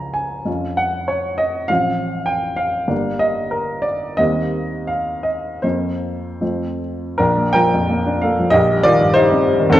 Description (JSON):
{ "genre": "classical, romantic character piece for solo piano", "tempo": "76-102 BPM", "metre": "2/4", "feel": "rubato", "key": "Bb major", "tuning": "A4 = 444 Hz", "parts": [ { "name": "dark baby grand piano", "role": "solo", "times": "0.0-9.8 s", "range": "Eb1 to Bb5", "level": "-16 LUFS", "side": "equal", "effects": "none" } ], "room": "moderate recital hall reverb, RT60 1.7 s", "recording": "worn, warbling old tape, cassette tape, warbly pitch drift", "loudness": "-16 LUFS", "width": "side -13 dB against mid", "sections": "0.0-7.2 A section; 7.2-9.8 B section", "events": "none", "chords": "0.5 Db/F; 1.7 F/A; 2.9 Gm; 4.2 Cm7/Eb; 5.6 Fsus4; 6.4 F; 7.2 Bb; 8.6 Cm/Bb" }